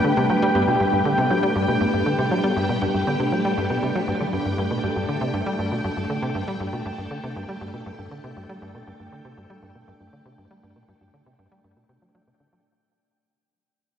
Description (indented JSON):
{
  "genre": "ambient",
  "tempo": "119 BPM",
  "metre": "4/4",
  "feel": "straight",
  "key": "G major",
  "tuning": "A4 = 440 Hz",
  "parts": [
    { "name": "string machine, full ensemble", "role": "sustained chords", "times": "0.0-12.7 s", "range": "A3 to G5", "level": "-25 LUFS", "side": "equal", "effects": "ensemble chorus" },
    { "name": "soft round pluck", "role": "arpeggios", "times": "0.0-4.6 s", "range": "G2 to D4", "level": "-29 LUFS", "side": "equal", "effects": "chorus, auto-pan, ping-pong delay" },
    { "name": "tight sequencer bass", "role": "riff", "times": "0.0-12.6 s", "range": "G2 to G3", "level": "-26 LUFS", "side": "equal", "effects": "analog chorus, ping-pong delay" },
    { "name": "bubbling stepped-filter texture", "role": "texture", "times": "0.0-12.7 s", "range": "G5", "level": "-28 LUFS", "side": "equal", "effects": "chorus, built-in reverb" }
  ],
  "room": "wet plate reverb, RT60 3.5 s",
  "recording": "worn, warbling old tape, cassette tape, warbly pitch drift",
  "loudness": "-20 LUFS",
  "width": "side -8 dB against mid",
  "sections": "0.0-12.6 A section",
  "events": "fade-out 0.0-12.6; filter sweep on analog synth bass 0.0-12.6",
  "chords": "0.0 Gadd9",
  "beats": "0.04 | 0.55 1.05 1.56 2.06 | 2.56 3.07 3.57 4.08 | 4.58 5.09 5.59 6.09 | 6.60 7.10 7.61 8.11 | 8.62 9.12 9.62 10.13 | 10.63 11.14 11.64 12.14"
}